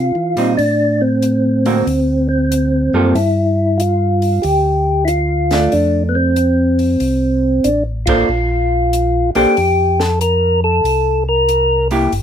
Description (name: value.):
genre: soul jazz organ trio.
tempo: 94 BPM.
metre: 4/4.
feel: swing 66% on 8ths.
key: F major.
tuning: A4 = 440 Hz.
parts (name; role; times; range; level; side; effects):
percussive tonewheel organ; melody; 0.0-11.9 s; B3 to Bb4; -15 LUFS; equal; slow rotary speaker.
mellow tonewheel organ; bass; 0.0-12.2 s; G1 to E3; -18 LUFS; equal; slow rotary speaker.
vintage hollow-body jazz guitar; accompaniment; 0.4-12.1 s; D3 to C5; -17 LUFS; right 3 dB; none.
compact cocktail drum kit; drums; 0.4-12.2 s; hi-hat, kick drum, ride cymbal, snare drum; -27 LUFS; left 1 dB; none.
room: little or no reverb.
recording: minimal, uncompressed stereo recording.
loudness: -13 LUFS.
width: side -9 dB against mid.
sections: 0.0-12.2 A section.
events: band accent 8.0-8.3.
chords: 0.0 Fmaj7(no3); 0.6 Amadd11; 1.9 D7b13; 3.2 G5; 5.7 F6; 8.3 Bbmaj7(no3); 10.8 C7.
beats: | 0.59 1.23 1.87 2.52 | 3.16 3.80 4.44 5.08 | 5.72 6.36 7.00 7.64 | 8.29 8.93 9.57 10.21 | 10.85 11.49 12.13.